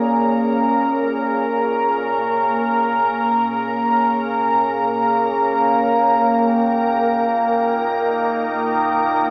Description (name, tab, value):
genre	ambient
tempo	free time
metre	none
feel	none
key	Bb dorian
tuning	A4 = 439 Hz
part	evolving wavetable pad	sustained chords	0.0-9.3 s	Bb2 to Bb4	-21 LUFS	equal	phaser, built-in reverb, shimmer reverb
part	organ-like drone	drone	0.0-9.3 s	Bb3 to Bb4	-28 LUFS	equal	ensemble chorus, built-in reverb
part	glass harmonica	texture	0.0-9.3 s	G5 to Bb5	-23 LUFS	equal	shimmer reverb
room	wet cathedral reverb, RT60 5.3 s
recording	worn, warbling old tape, cassette tape, warbly pitch drift, small speaker sound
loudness	-18 LUFS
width	mono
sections	0.0-9.3 A section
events	none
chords	0.0 Bbm7; 6.2 Cm/Bb (rootless)